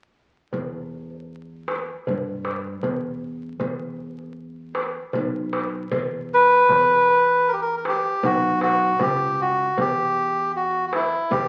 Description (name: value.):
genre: Arabic maqam ensemble.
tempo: 78 BPM.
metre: 4/4.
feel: straight.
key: E maqam nikriz.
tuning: A4 = 440 Hz.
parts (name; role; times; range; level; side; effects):
upright bass; bass; 0.5-11.5 s; B1 to G2; -33 LUFS; equal; none.
darbuka; percussion; 0.5-11.5 s; none; -30 LUFS; equal; none.
melodica; melody; 6.3-11.5 s; E4 to B4; -20 LUFS; equal; none.
room: moderate large studio reverb, RT60 0.8 s.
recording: very old 78 rpm record, vinyl crackle, lossy compression artefacts.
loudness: -22 LUFS.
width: mono.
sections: 0.5-6.7 A section; 6.7-11.5 B section.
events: none.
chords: none.